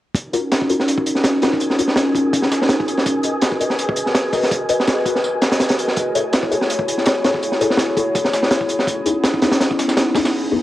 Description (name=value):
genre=drum and bass, jungle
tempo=165 BPM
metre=4/4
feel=swing 54% on 16ths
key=Eb phrygian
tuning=A4 = 442 Hz
part: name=crunchy breakbeat drum kit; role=drums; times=0.1-10.3 s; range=hi-hat, kick drum, snare drum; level=-19 LUFS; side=equal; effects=high-pass filter on kick, high-pass filter on hats, high-pass filter on snare, high-pass filter on room
part: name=wind-like tuned noise texture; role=texture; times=1.3-10.3 s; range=Ab4 to Ab5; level=-30 LUFS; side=equal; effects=built-in reverb, cassette tape
part: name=warbly tape-like pad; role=sustained chords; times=0.4-10.3 s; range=A3 to Eb5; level=-20 LUFS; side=equal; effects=chorus, built-in reverb, cassette tape
part: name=electronic tambourine and snare drum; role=drums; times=0.2-10.3 s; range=none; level=-29 LUFS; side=equal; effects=high-pass filter on perc, high-pass filter on snare
part: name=filtered dub chord stab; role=stabs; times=0.3-10.6 s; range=Cb4 to Eb5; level=-23 LUFS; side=left 4 dB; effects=phaser, lush chorus, cassette tape, dub echo
room=moderate lush hall reverb, RT60 2.5 s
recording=home recording on cassette, vinyl crackle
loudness=-16 LUFS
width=side -14 dB against mid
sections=0.2-10.6 A section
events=break 10.3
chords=0.2 Ebm9; 3.1 Abm9; 6.0 Gbm9; 8.9 Dbm9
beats=| 0.15 0.52 0.88 1.24 | 1.61 1.97 2.33 2.70 | 3.06 3.43 3.79 4.15 | 4.52 4.88 5.24 5.61 | 5.97 6.33 6.70 7.06 | 7.43 7.79 8.15 8.52 | 8.88 9.24 9.61 9.97 | 10.34